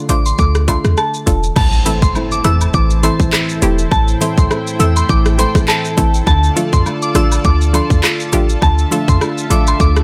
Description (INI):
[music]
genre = dancehall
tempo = 102 BPM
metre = 4/4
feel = swing 56% on 16ths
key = A minor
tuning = A4 = 437 Hz
[part]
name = nylon-string guitar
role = arpeggios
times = 0.0-10.0 s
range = A2 to F4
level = -24 LUFS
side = equal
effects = digital delay
[part]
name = soft synth bell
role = melody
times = 0.1-9.9 s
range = A5 to E6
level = -22 LUFS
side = equal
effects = chorus, digital delay
[part]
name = hollow square pluck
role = accompaniment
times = 0.1-9.6 s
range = E3 to C5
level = -22 LUFS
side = equal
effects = chorus
[part]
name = clean 808-style bass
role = bass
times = 0.1-10.0 s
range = E1 to F2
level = -17 LUFS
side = equal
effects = none
[part]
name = island pop drum kit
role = drums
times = 0.1-10.0 s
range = crash cymbal, handclaps, hi-hat, kick drum, rim click, shaker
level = -19 LUFS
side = equal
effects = overdrive
[part]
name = cabasa and woodblock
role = percussion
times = 0.1-9.8 s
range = none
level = -30 LUFS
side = equal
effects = none
[part]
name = lush unison pad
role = sustained chords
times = 1.6-10.0 s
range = E4 to A5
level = -28 LUFS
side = equal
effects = chorus, sidechain pumping
[part]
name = impact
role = sound effects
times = 1.6-3.9 s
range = none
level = -25 LUFS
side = equal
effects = none
[sound]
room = little or no reverb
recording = none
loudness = -14 LUFS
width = mono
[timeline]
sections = 0.0-1.6 A section; 1.6-10.0 B section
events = impact 1.6-3.9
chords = 0.0 Dm; 1.6 Am; 6.3 Dm